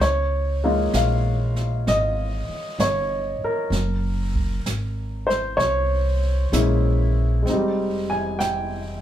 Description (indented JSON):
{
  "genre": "jazz ballad",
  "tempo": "64 BPM",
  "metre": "4/4",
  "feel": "swing 68% on 8ths",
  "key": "unclear",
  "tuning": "A4 = 439 Hz",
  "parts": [
    { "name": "warm upright piano", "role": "accompaniment", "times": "0.0-9.0 s", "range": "G3 to Ab5", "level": "-23 LUFS", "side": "equal", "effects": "none" },
    { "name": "upright bass", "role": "bass", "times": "0.0-9.0 s", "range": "F1 to Db2", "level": "-23 LUFS", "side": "equal", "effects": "none" },
    { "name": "jazz brush drum kit", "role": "drums", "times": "0.0-9.0 s", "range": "brushed snare drum, hi-hat, kick drum, snare drum", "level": "-30 LUFS", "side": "right 2 dB", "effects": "none" }
  ],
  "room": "moderate studio ambience, RT60 0.5 s",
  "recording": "heard from further back in the room",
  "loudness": "-20 LUFS",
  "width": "side -11 dB against mid",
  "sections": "0.0-7.5 A section; 7.5-9.0 B section",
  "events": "none",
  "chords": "0.0 Db6; 3.7 Gb9; 7.5 Fm7"
}